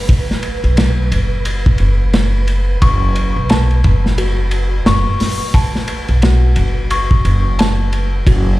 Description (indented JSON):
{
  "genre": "trip hop",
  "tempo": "88 BPM",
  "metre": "4/4",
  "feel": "swing 60% on 16ths",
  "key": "F# minor",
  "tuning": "A4 = 439 Hz",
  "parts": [
    { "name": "upright bass", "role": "bass", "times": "0.0-8.6 s", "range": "F#1 to B1", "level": "-14 LUFS", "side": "equal", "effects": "none" },
    { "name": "wind-like tuned noise texture", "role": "texture", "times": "0.0-8.6 s", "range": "B4", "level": "-29 LUFS", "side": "right 4 dB", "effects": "built-in reverb" },
    { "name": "crunchy breakbeat drum kit", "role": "drums", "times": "0.1-8.5 s", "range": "hi-hat, kick drum, ride cymbal, snare drum", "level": "-16 LUFS", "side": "equal", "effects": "none" },
    { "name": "music box", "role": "arpeggios", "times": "2.8-8.6 s", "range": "F#4 to C#6", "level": "-22 LUFS", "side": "left 4 dB", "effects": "digital delay" }
  ],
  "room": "little or no reverb",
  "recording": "played on a big sound system in a bare room, large studio reverb",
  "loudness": "-12 LUFS",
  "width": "side -17 dB against mid",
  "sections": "0.0-8.6 A section",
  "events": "none",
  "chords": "0.0 B5/F#; 2.8 F#m"
}